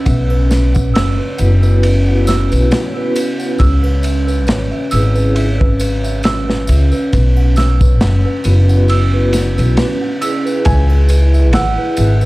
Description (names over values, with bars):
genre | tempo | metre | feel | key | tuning
trip hop | 68 BPM | 4/4 | swing 56% on 16ths | unclear | A4 = 440 Hz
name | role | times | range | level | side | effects
felt-muted upright piano | melody | 0.0-0.5, 10.7-12.3 s | B4 to G#5 | -26 LUFS | right 1 dB | dub echo
dark analog pad | sustained chords | 0.0-12.3 s | C#4 to E4 | -22 LUFS | right 1 dB | chorus
music box | arpeggios | 0.0-12.3 s | B4 to E6 | -23 LUFS | right 2 dB | digital delay
upright bass | bass | 0.1-12.3 s | F#1 to C#2 | -12 LUFS | equal | none
crunchy breakbeat drum kit | drums | 0.1-12.2 s | kick drum, ride cymbal, snare drum | -19 LUFS | equal | none
tambourine and triangle | percussion | 0.1-12.3 s | none | -33 LUFS | equal | none
vibraphone with medium hard mallets | accompaniment | 1.4-12.3 s | B3 to B4 | -21 LUFS | equal | tremolo, tape echo
room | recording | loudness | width
small room reverb | dark, warm production | -11 LUFS | side -20 dB against mid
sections
0.0-12.3 A section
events
none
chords
0.1 Bsus4; 3.6 C#m7; 7.1 Bsus4; 10.7 C#m7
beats
| 0.07 0.95 1.83 2.71 | 3.60 4.48 5.36 6.24 | 7.12 8.01 8.89 9.77 | 10.65 11.54